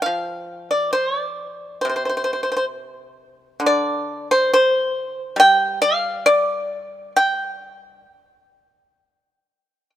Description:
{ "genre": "chinese traditional, Chinese solo plucked strings", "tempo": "68 BPM", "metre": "4/4", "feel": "rubato", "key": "unclear", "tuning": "A4 = 439 Hz", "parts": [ { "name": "pipa", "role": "solo", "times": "0.0-9.9 s", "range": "C3 to G5", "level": "-17 LUFS", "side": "equal", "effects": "none" } ], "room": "light reverb", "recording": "minimal, uncompressed stereo recording", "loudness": "-17 LUFS", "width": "side -12 dB against mid", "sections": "0.0-10.0 A section", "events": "none", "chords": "none", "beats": "| 0.08 0.97 1.86 2.75 | 3.63 4.51 5.40 6.27 | 7.17 8.07 8.98" }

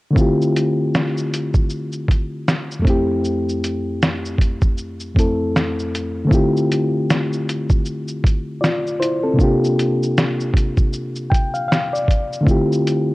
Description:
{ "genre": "lo-fi hip hop", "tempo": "78 BPM", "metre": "4/4", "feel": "swing 59% on 16ths", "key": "D minor", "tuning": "A4 = 441 Hz", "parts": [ { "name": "reed electric piano", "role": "accompaniment", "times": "0.1-13.1 s", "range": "F2 to G5", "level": "-19 LUFS", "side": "left 1 dB", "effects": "low-pass filter" }, { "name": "lo-fi sampler-style drum kit", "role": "drums", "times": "0.2-13.1 s", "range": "hi-hat, kick drum, shaker, snare drum", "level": "-18 LUFS", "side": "equal", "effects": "vintage 12-bit sampler grit" } ], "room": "light reverb", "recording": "cassette tape", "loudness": "-16 LUFS", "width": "side -20 dB against mid", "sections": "0.2-13.1 A section", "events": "reed electric piano fill 10.9-12.5", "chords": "0.2 Dm11; 9.4 C9sus4; 12.5 Dm11", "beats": "| 0.16 0.93 1.70 2.47 | 3.23 4.00 4.77 5.54 | 6.31 7.08 7.85 8.62 | 9.39 10.16 10.93 11.70 | 12.47" }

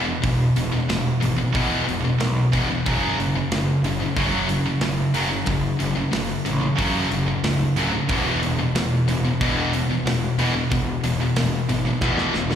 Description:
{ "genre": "heavy metal", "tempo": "92 BPM", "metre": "4/4", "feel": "straight", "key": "unclear", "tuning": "A4 = 441 Hz", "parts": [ { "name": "high-gain distorted guitar", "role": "riff", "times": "0.0-12.6 s", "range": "E2 to F#3", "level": "-23 LUFS", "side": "left 6 dB", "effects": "distortion, slapback echo" }, { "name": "high-gain distorted guitar", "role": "riff", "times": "0.0-12.6 s", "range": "E2 to F#3", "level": "-24 LUFS", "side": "right 7 dB", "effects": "distortion, slapback echo" }, { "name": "fuzz picked electric bass", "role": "bass", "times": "0.0-12.5 s", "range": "C#1 to F#2", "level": "-26 LUFS", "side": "equal", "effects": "overdrive" }, { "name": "tight metal drum kit", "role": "drums", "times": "0.2-12.6 s", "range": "hi-hat, kick drum, snare drum", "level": "-28 LUFS", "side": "right 1 dB", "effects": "none" } ], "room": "small room ambience", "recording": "live gig heard through the venue's PA, recital hall reverb", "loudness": "-19 LUFS", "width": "side -9 dB against mid", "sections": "0.0-12.6 A section", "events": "drum fill 12.0-12.6", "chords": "0.0 E5; 2.9 F#5; 8.1 E5", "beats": "| 0.24 0.89 1.54 2.20 | 2.85 3.51 4.16 4.82 | 5.47 6.13 6.78 7.44 | 8.09 8.75 9.40 10.06 | 10.71 11.36 12.02" }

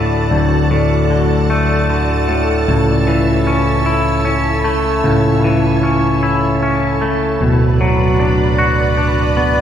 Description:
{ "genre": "rock", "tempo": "51 BPM (dotted quarters)", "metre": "6/8", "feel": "straight", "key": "unclear", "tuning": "A4 = 440 Hz", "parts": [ { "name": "soft additive organ-like pad", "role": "sustained chords", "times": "0.0-9.6 s", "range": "E4 to B5", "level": "-20 LUFS", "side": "equal", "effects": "ensemble chorus, built-in reverb" }, { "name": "twangy electric guitar", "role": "arpeggios", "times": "0.0-9.6 s", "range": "D2 to F#4", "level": "-15 LUFS", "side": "left 1 dB", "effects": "none" }, { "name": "growling picked electric bass", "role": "bass", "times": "0.0-9.6 s", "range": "D1 to C#2", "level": "-17 LUFS", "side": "right 1 dB", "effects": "overdrive" } ], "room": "wet large studio reverb, RT60 1.3 s", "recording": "band playing live in one room", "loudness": "-12 LUFS", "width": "side -9 dB against mid", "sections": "0.0-9.6 A section", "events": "none", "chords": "0.0 D; 2.7 A/C#; 7.4 Bm/D", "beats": "| 0.32 1.50 | 2.69 3.87 | 5.05 6.23 | 7.41 8.59" }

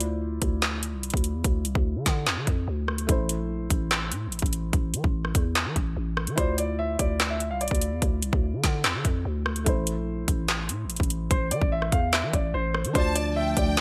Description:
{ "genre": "hip hop, drill", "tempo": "146 BPM", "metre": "4/4", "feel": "half-time", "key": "D minor", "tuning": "A4 = 440 Hz", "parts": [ { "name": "felt-muted upright piano", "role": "accompaniment", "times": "0.0-13.8 s", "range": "A3 to D5", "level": "-38 LUFS", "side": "equal", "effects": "none" }, { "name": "growling 808-style bass", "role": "bass", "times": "0.0-13.8 s", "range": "A1 to E3", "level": "-31 LUFS", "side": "equal", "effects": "none" }, { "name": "drill drum kit", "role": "drums", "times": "0.0-13.8 s", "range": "handclaps, hi-hat, kick drum, rim click, snare drum", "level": "-28 LUFS", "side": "equal", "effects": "gated reverb" }, { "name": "dark grand piano", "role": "melody", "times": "6.4-8.0, 11.3-13.8 s", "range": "C5 to F5", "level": "-32 LUFS", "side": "equal", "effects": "none" }, { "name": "rich studio violin section", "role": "second line", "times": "13.0-13.8 s", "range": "G5 to A5", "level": "-33 LUFS", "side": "equal", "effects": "digital delay" }, { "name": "dark analog pad", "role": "sustained chords", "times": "13.2-13.8 s", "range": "D3 to D4", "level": "-34 LUFS", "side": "equal", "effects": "chorus" } ], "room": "studio ambience", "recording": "bright 1980s-style digital production", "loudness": "-26 LUFS", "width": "mono", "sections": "0.0-13.0 A section", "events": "break 0.0-6.4", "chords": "0.0 Dmadd9; 3.1 Am; 6.4 Dmadd9; 9.7 Am; 13.0 Dm", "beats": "0.21 0.62 1.03 | 1.44 1.85 2.27 2.68 | 3.09 3.50 3.91 4.32 | 4.73 5.14 5.55 5.96 | 6.38 6.79 7.20 7.61 | 8.02 8.43 8.84 9.25 | 9.66 10.07 10.48 10.90 | 11.31 11.72 12.13 12.54 | 12.95 13.36 13.77" }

